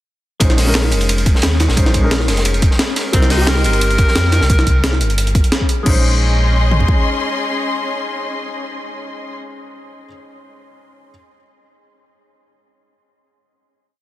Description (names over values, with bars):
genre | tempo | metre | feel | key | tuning
liquid drum and bass | 176 BPM | 4/4 | straight | Bb dorian | A4 = 439 Hz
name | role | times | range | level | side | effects
felt-muted upright piano | accompaniment | 0.4-11.1 s | G3 to C5 | -24 LUFS | left 1 dB | tape echo
sub bass with octave | bass | 0.4-6.8 s | F1 to F2 | -16 LUFS | equal | tube saturation
breakbeat sampler-style drum kit | drums | 0.4-5.9 s | crash cymbal, hi-hat, snare drum | -20 LUFS | equal | none
crunchy breakbeat drum kit | drums | 0.4-4.5 s | hi-hat, ride cymbal, snare drum | -24 LUFS | equal | high-pass filter on cymbals, high-pass filter on hats, high-pass filter on snare, high-pass filter on room
pop drum kit | drums | 0.4-7.0 s | kick drum, toms | -15 LUFS | equal | none
breathy tenor saxophone | melody | 3.1-5.5 s | C4 to Bb4 | -23 LUFS | equal | tape echo
dark studio string section | sustained chords | 3.1-9.3 s | Db4 to C6 | -23 LUFS | left 3 dB | sidechain pumping
room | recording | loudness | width
little or no reverb | dense, heavily limited modern master | -13 LUFS | side -15 dB against mid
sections
0.4-5.9 drop; 5.9-8.6 final chord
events
drop 0.4-5.9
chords
0.4 Bbm11; 3.1 Cm7; 5.9 Bbm11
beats
| 0.41 0.75 1.09 1.43 | 1.77 2.11 2.45 2.79 | 3.13 3.48 3.82 4.16 | 4.50 4.84 5.18 5.52 | 5.86 6.20 6.54 6.88 | 7.22 7.57 7.91 8.25